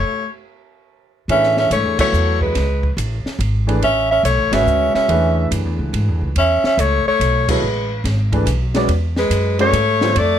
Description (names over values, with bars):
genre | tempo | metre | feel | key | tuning
modal jazz | 142 BPM | 3/4 | swing 66% on 8ths | A major | A4 = 440 Hz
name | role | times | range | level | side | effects
breathy soprano saxophone | melody | 0.0-10.4 s | B4 to E5 | -17 LUFS | right 1 dB | none
breathy tenor saxophone | second line | 0.0-10.4 s | G#3 to C#4 | -22 LUFS | left 6 dB | none
warm upright piano | accompaniment | 1.3-10.1 s | C#3 to D5 | -22 LUFS | equal | none
upright bass | bass | 1.3-10.4 s | G#1 to A2 | -19 LUFS | equal | none
compact cocktail drum kit | drums | 1.3-10.3 s | crash cymbal, hi-hat, kick drum, ride cymbal, snare drum | -26 LUFS | equal | none
room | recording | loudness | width
light reverb | close, detailed microphones | -15 LUFS | side -10 dB against mid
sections
0.0-1.3 A section; 1.3-10.4 B section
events
stop 0.0-1.3; band accent 1.9, 7.4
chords
0.0 Cb7sus2 (rootless); 1.3 Amaj9